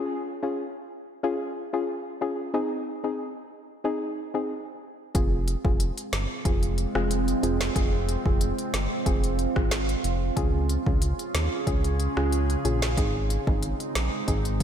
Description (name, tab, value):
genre	dancehall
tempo	92 BPM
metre	4/4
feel	straight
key	F minor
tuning	A4 = 440 Hz
part	soft round pluck	accompaniment	0.0-14.6 s	C4 to Ab4	-30 LUFS	left 2 dB	chorus, sidechain pumping
part	deep dark ambient pad	sustained chords	6.0-14.6 s	Db3 to Ab4	-30 LUFS	right 3 dB	chorus, built-in reverb, sidechain pumping
part	round analog bass	bass	5.1-14.6 s	F1 to Eb2	-27 LUFS	equal	none
part	afro-pop drum kit	drums	5.1-14.6 s	hi-hat, kick drum, rim click, snare drum	-27 LUFS	equal	none
room	light reverb, digital ambience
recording	none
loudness	-24 LUFS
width	side -9 dB against mid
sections	0.0-14.6 A section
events	drum fill 14.3-14.6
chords	0.0 Db; 2.5 Ab; 5.1 Fm; 10.4 Db; 13.0 Ab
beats	0.58 1.24 1.89 | 2.54 3.19 3.85 4.50 | 5.15 5.80 6.45 7.11 | 7.76 8.41 9.06 9.71 | 10.37 11.02 11.67 12.32 | 12.97 13.63 14.28